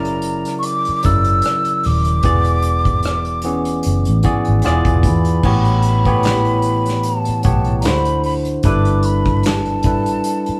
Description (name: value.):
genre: R&B, neo-soul.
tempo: 75 BPM.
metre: 4/4.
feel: swing 56% on 16ths.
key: unclear.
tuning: A4 = 440 Hz.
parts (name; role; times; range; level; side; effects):
breathy mellow silver concert flute; melody; 0.0-10.6 s; A5 to E6; -23 LUFS; equal; none.
barky tine electric piano; accompaniment; 0.0-10.6 s; A2 to D5; -22 LUFS; equal; overdrive.
vintage muted fingered electric bass; bass; 0.0-10.5 s; Eb1 to E2; -21 LUFS; equal; none.
unplugged drum kit; drums; 0.0-10.6 s; crash cymbal, handclaps, hi-hat, kick drum, rim click, snare drum; -23 LUFS; equal; none.
room: moderate stone room reverb, RT60 1.3 s.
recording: band playing live in one room, vinyl crackle.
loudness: -16 LUFS.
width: mono.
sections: 0.0-5.4 A section; 5.4-10.6 A section.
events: none.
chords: 0.0 F#7b13; 2.2 E9; 4.6 E7b9; 5.4 A13; 7.8 D9; 8.6 G6.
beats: 0.64 1.44 | 2.24 3.04 3.84 4.64 | 5.44 6.24 7.04 7.84 | 8.64 9.44 10.24.